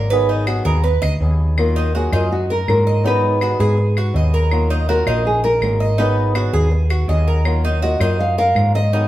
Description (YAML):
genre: latin, Cuban son and guajira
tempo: 163 BPM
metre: 4/4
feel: straight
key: Eb minor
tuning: A4 = 440 Hz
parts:
  - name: fingerpicked swing-style acoustic guitar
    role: accompaniment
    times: 0.0-9.1 s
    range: Eb3 to Ab4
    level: -24 LUFS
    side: left 2 dB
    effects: none
  - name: Cuban tres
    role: arpeggios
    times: 0.0-9.1 s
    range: Eb4 to Eb5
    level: -22 LUFS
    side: right 3 dB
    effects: none
  - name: woody fretless electric bass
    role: bass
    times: 0.0-9.1 s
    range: Ab1 to Ab2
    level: -17 LUFS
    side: equal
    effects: none
  - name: claves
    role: percussion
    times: 0.5-8.7 s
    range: none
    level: -30 LUFS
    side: left 4 dB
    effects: none
  - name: nylon-string guitar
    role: melody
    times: 2.0-9.1 s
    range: Gb4 to F5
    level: -20 LUFS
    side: equal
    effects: none
room: wet large studio reverb, RT60 1.2 s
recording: band playing live in one room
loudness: -15 LUFS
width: side -14 dB against mid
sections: 0.0-1.6 A section; 1.6-9.1 B section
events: Cuban tres solo 0.0-1.6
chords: 0.1 Abm7; 1.6 Ebmadd9; 3.0 Abm7; 4.5 Ebmadd9; 6.0 Abm7; 7.5 Ebmadd9